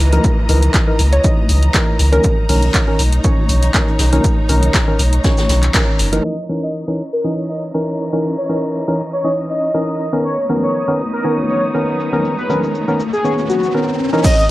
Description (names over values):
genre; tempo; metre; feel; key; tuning
deep house; 120 BPM; 4/4; swing 54% on 16ths; C# dorian; A4 = 441 Hz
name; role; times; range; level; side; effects
percussive organ stab; stabs; 0.0-14.4 s; D#3 to D#5; -19 LUFS; equal; chorus, sidechain pumping, tape echo
warm sub bass; bass; 0.0-6.2 s; F#1 to C#2; -13 LUFS; equal; tube saturation, sidechain pumping
muted studio string section; texture; 0.0-13.7 s; E3 to A#5; -26 LUFS; equal; sidechain pumping
house drum kit; drums; 0.1-14.5 s; crash cymbal, handclaps, hi-hat, shaker; -21 LUFS; left 1 dB; low-pass filter on hats, low-pass filter on snare, low-pass filter on cymbals, low-pass filter on perc, low-pass filter on room
jazz brush drum kit; drums; 0.1-6.2, 14.2-14.5 s; hi-hat, shaker, snare drum; -28 LUFS; equal; none
congas; percussion; 0.1-6.2, 10.4-13.6 s; none; -27 LUFS; left 2 dB; sidechain pumping on perc
electronic kick drum; drums; 0.2-5.8, 14.2-14.4 s; none; -16 LUFS; equal; none
hollow square pluck; melody; 1.1-2.3 s; A#4 to C#5; -22 LUFS; equal; chorus, analog delay
warm velvety synth lead; melody; 6.2-14.4 s; F#4 to D#5; -20 LUFS; equal; chorus, analog delay
riser; sound effects; 12.0-14.2 s; none; -25 LUFS; equal; none
analog string pad; texture; 10.2-13.7 s; D#6; -32 LUFS; right 1 dB; ensemble chorus, sidechain pumping
room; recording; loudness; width
small room ambience; transformer saturation, vinyl crackle, low-pass filter; -13 LUFS; side -17 dB against mid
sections
0.0-6.2 A section; 6.2-14.2 B section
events
band accent 5.7; filter sweep on synth stab 6.2-14.2; filter sweep 6.2-14.2; riser 12.0-14.2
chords
0.0 C#m69; 2.2 Bmaj9; 6.2 C#m69